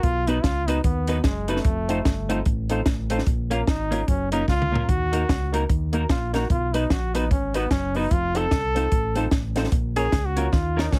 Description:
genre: ska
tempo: 149 BPM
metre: 4/4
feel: swing 60% on 8ths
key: unclear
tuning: A4 = 440 Hz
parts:
  - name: clear trombone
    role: melody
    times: 0.0-11.0 s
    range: Ab3 to A4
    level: -29 LUFS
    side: equal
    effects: none
  - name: fingered electric bass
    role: bass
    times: 0.0-11.0 s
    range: F1 to D#2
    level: -29 LUFS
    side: equal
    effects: none
  - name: compact cocktail drum kit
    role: drums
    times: 0.0-11.0 s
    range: hi-hat, kick drum, snare drum, toms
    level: -26 LUFS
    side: equal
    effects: none
  - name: clean electric guitar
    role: accompaniment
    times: 0.3-10.9 s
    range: A3 to Db5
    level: -31 LUFS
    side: equal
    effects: subtle chorus
  - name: warm upright piano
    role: stabs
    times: 0.3-10.9 s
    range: Bb3 to B4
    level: -32 LUFS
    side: equal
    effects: none
room: little or no reverb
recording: heavily compressed radio sound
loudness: -23 LUFS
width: mono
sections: 0.0-11.0 A section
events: trombone solo 0.0-11.0; drum fill 4.5-4.9, 10.5-11.0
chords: 0.0 B; 1.6 F7; 3.3 Bbm; 4.9 Ebm; 6.5 B; 8.1 F7; 9.7 Bbm

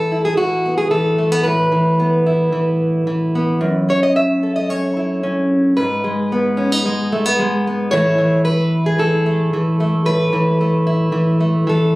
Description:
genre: folk, solo fingerstyle acoustic guitar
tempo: 112 BPM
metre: 4/4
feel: straight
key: unclear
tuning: A4 = 437 Hz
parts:
  - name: fingerpicked plugged-in steel-string acoustic guitar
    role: solo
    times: 0.0-12.0 s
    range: F#2 to E5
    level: -14 LUFS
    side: equal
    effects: none
room: light reverb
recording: recorded on a phone in the room, club reverb, compression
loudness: -14 LUFS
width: side -20 dB against mid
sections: 0.0-12.0 A section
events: none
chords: 0.0 Asus2; 3.6 F#m7; 5.8 G#m; 7.9 Asus2

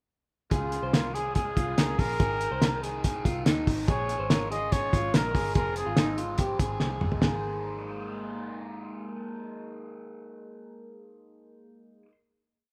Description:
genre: jangly indie pop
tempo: 144 BPM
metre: 4/4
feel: straight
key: Ab major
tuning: A4 = 440 Hz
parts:
  - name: breathy trumpet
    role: melody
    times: 0.5-6.2 s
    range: F4 to Eb5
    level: -34 LUFS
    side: equal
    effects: none
  - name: raw garage guitar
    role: accompaniment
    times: 0.5-12.1 s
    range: Bb2 to C5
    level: -41 LUFS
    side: equal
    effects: overdrive, phaser
  - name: electric guitar through a small old amp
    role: arpeggios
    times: 0.5-8.4 s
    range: Eb4 to C5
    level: -36 LUFS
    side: equal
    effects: none
  - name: vintage muted picked electric bass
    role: bass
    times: 0.5-12.0 s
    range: F1 to Eb2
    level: -39 LUFS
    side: equal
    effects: none
  - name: cloth-damped thuddy drum kit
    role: drums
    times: 0.5-7.3 s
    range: hi-hat, kick drum, snare drum, toms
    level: -29 LUFS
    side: equal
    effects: none
room: studio reverb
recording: rough home demo mix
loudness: -28 LUFS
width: mono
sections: 0.5-7.2 bridge; 7.2-10.6 final chord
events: drum fill 6.8-7.2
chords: 0.5 Db; 2.2 Abadd9; 3.9 Bbm7; 5.6 Fm; 7.2 Abadd9

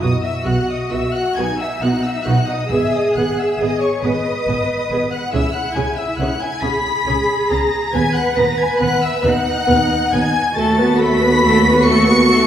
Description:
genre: classical, slow romantic movement for string orchestra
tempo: 46 BPM (dotted quarters)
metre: 6/8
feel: rubato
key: B major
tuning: A4 = 440 Hz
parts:
  - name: warm symphonic violin section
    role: melody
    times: 0.0-12.5 s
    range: C#6 to C#7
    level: -23 LUFS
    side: left 1 dB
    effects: none
  - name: warm symphonic violin section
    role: second line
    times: 0.0-12.5 s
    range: C#5 to C#6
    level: -21 LUFS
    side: left 3 dB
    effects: none
  - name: rich symphonic viola section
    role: accompaniment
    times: 0.0-12.5 s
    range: A3 to B4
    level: -19 LUFS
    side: right 1 dB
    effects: none
  - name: rich symphonic cello section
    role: bass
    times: 0.0-12.5 s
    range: D#4 to B4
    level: -21 LUFS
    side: right 1 dB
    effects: none
  - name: warm symphonic double bass section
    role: bass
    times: 0.0-12.5 s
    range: G#1 to D#2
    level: -22 LUFS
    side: right 2 dB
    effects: none
room: wet recital hall reverb, RT60 1.6 s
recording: heard from further back in the room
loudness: -14 LUFS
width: side -10 dB against mid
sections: 0.0-12.5 A section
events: none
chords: 0.0 B; 2.7 G#m; 5.3 C#m; 7.9 B/D#; 10.6 B7/D#

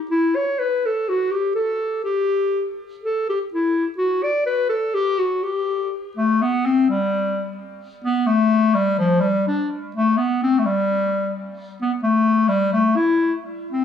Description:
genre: alpine folk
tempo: 125 BPM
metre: 2/4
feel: rubato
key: G major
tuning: A4 = 441 Hz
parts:
  - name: warm clarinet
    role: solo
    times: 0.1-13.8 s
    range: F3 to D5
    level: -18 LUFS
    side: left 2 dB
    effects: tape echo
room: light reverb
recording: dry, gritty hardware recording, cassette tape, studio reverb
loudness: -18 LUFS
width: side -8 dB against mid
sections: 0.0-5.9 A section; 5.9-13.8 B section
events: none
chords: none

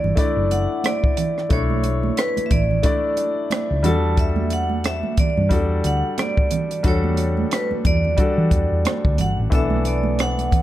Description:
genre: lush 1970s-style soul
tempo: 90 BPM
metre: 4/4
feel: swing 58% on 16ths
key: B minor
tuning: A4 = 440 Hz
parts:
  - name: vibraphone with hard mallets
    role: melody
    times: 0.0-10.6 s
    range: B4 to A5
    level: -25 LUFS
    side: right 1 dB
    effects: slapback echo
  - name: clear baby grand piano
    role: accompaniment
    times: 0.0-10.6 s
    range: E3 to D5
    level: -25 LUFS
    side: left 4 dB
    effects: none
  - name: hollow-body short-scale fingered electric bass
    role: bass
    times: 0.0-10.6 s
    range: F#1 to E3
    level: -22 LUFS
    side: equal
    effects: none
  - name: congas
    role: percussion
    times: 0.0-10.6 s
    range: none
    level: -27 LUFS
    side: right 6 dB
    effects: none
  - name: compact cocktail drum kit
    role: drums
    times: 0.2-10.6 s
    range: hi-hat, kick drum, rim click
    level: -21 LUFS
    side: equal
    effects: none
room: light reverb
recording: dark, warm production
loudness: -18 LUFS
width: side -13 dB against mid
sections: 0.0-10.6 A section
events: none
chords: 0.0 Bm11; 3.8 Em11; 9.5 Bm11

